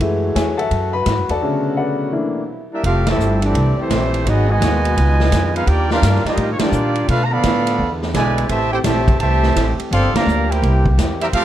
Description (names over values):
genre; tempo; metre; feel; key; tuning
jazz, big band swing; 170 BPM; 4/4; swing 65% on 8ths; F major; A4 = 439 Hz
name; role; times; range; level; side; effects
clear baby grand piano; accompaniment; 0.0-2.4 s; C#3 to B5; -19 LUFS; left 3 dB; none
brilliant trombone section; sustained chords; 0.0-11.4 s; C2 to G4; -29 LUFS; left 1 dB; none
upright bass; bass; 0.0-11.4 s; F1 to B2; -18 LUFS; equal; none
swinging big-band drum kit; drums; 0.0-11.4 s; hi-hat, kick drum, ride cymbal, snare drum; -22 LUFS; equal; none
clear trumpet section; melody; 2.7-11.4 s; A3 to C6; -20 LUFS; right 2 dB; none
warm trombone section; second line; 2.7-11.4 s; Cb3 to G4; -23 LUFS; equal; none
room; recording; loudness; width
light reverb; dark, warm production; -15 LUFS; side -12 dB against mid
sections
0.0-2.8 A section; 2.8-11.4 B section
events
grand piano solo 0.0-2.8; break 1.4-2.8; band accent 3.0, 6.6, 10.1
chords
0.0 F#m9; 1.4 Bm7; 2.1 C13; 2.8 Fmaj9; 4.3 Abm7; 5.0 Db9; 5.7 Ebmaj9; 7.1 Bm7b5; 7.8 E7; 8.5 Am7; 9.9 Gm7; 10.6 C7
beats
| 0.00 0.35 0.71 1.06 | 1.42 1.77 2.13 2.48 | 2.83 3.19 3.54 3.90 | 4.25 4.61 4.96 5.31 | 5.67 6.02 6.38 6.73 | 7.08 7.44 7.79 8.14 | 8.50 8.85 9.21 9.56 | 9.91 10.27 10.62 10.98 | 11.33